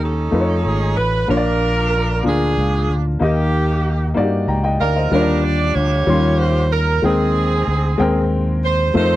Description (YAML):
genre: slow gospel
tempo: 63 BPM (dotted quarters)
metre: 6/8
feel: straight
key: Eb major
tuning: A4 = 441 Hz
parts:
  - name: clear saxophone section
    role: melody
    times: 0.0-9.2 s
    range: Bb3 to D5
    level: -20 LUFS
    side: right 3 dB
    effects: none
  - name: warm upright piano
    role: accompaniment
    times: 0.0-9.2 s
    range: Bb2 to C6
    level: -20 LUFS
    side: left 2 dB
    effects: none
  - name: fingered electric bass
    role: bass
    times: 0.0-9.2 s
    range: G#1 to G2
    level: -19 LUFS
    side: equal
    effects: none
room: little or no reverb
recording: dry, close 1970s-style studio recording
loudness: -15 LUFS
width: side -15 dB against mid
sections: 0.0-5.1 A section; 5.1-9.2 B section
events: none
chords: 0.3 F7alt; 1.3 Bb; 3.2 Eb; 5.1 Ebmaj9; 6.1 Eb13; 7.0 Abmaj9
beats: 0.33 | 1.29 2.25 | 3.21 4.16 | 5.12 6.08 | 7.04 7.99 | 8.95